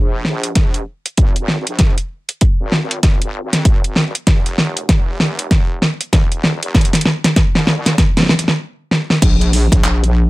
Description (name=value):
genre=glitch hop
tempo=97 BPM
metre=4/4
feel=swing 61% on 16ths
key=F minor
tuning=A4 = 440 Hz
part: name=wobble bass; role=bass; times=0.0-10.3 s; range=Eb1 to F2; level=-20 LUFS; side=equal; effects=chorus, tube saturation, high-pass filter
part: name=pop drum kit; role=drums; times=0.2-10.1 s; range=crash cymbal, handclaps, hi-hat, snare drum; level=-15 LUFS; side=equal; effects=none
part: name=electronic kick drum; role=drums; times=0.6-9.8 s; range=none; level=-14 LUFS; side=equal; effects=none
room=light reverb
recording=none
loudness=-13 LUFS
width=side -20 dB against mid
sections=0.0-9.2 A section; 9.2-10.3 B section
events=build-up 0.0-9.2; drum fill 0.0-8.6, 8.9-9.2; stop 8.6-9.2; drop 9.2-10.3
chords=none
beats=0.56 1.18 | 1.80 2.42 3.04 3.66 | 4.28 4.89 5.51 6.13 | 6.75 7.37 7.99 8.61 | 9.22 9.84